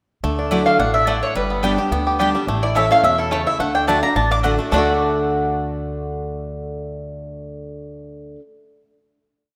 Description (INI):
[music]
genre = bluegrass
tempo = 214 BPM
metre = 4/4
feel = straight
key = D major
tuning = A4 = 439 Hz
[part]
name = picked steel-string acoustic guitar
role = accompaniment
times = 0.2-8.4 s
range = G2 to G4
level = -26 LUFS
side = equal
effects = none
[part]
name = bluegrass banjo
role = arpeggios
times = 0.2-8.4 s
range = G3 to A4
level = -26 LUFS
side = equal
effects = none
[part]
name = upright bass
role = bass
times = 0.2-8.4 s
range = G1 to E2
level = -28 LUFS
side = equal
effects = none
[part]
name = mandolin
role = stabs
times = 0.5-8.4 s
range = A3 to A5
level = -28 LUFS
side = equal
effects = none
[part]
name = mandolin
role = melody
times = 0.7-8.4 s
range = A4 to D6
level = -21 LUFS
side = equal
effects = none
[sound]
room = moderate lush hall reverb, RT60 2.2 s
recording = rough home demo mix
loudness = -19 LUFS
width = mono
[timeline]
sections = 0.2-4.7 A section; 4.7-7.0 final chord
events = none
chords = 0.2 Dadd9; 1.4 G; 2.5 A; 3.6 D